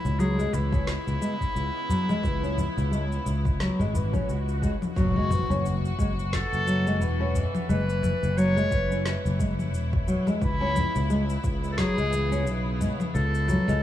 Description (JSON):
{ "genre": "organic downtempo", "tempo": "88 BPM", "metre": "4/4", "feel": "swing 57% on 16ths", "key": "F# minor", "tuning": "A4 = 441 Hz", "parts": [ { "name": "bright clarinet", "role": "melody", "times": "0.0-13.8 s", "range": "E4 to C#5", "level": "-31 LUFS", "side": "left 1 dB", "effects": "digital delay" }, { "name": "warm studio string section", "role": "sustained chords", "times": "0.0-13.8 s", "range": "C#3 to F#4", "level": "-36 LUFS", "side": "left 1 dB", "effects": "sidechain pumping" }, { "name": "sustaining fretless electric bass", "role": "bass", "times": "0.0-13.8 s", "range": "E1 to C#2", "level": "-27 LUFS", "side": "equal", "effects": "sidechain pumping" }, { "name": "electronic shaker, snare drum and congas", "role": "drums", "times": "0.1-13.8 s", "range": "none", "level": "-34 LUFS", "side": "left 2 dB", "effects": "none" }, { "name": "nylon-string guitar", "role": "arpeggios", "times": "0.2-13.8 s", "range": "E3 to C#4", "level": "-29 LUFS", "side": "equal", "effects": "digital delay" }, { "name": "electronic kick drum", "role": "drums", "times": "0.7-11.9 s", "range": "none", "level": "-28 LUFS", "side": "equal", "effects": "overdrive" }, { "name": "udu", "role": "percussion", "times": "1.9-13.6 s", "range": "none", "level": "-31 LUFS", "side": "left 1 dB", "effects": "none" }, { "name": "swell and impact", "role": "sound effects", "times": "3.9-7.7 s", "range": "none", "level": "-35 LUFS", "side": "left 1 dB", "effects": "none" } ], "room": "studio ambience", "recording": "small room ambience", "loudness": "-23 LUFS", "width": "side -12 dB against mid", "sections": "0.0-5.0 A section; 5.0-13.8 B section", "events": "swell 3.9-5.0; impact 5.0-7.7", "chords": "0.0 C#m7; 5.0 F#7(no3); 10.4 C#m7", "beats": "0.19 0.87 1.55 | 2.24 2.92 3.60 4.28 | 4.96 5.65 6.33 7.01 | 7.69 8.37 9.05 9.74 | 10.42 11.10 11.78 12.46 | 13.15 13.83" }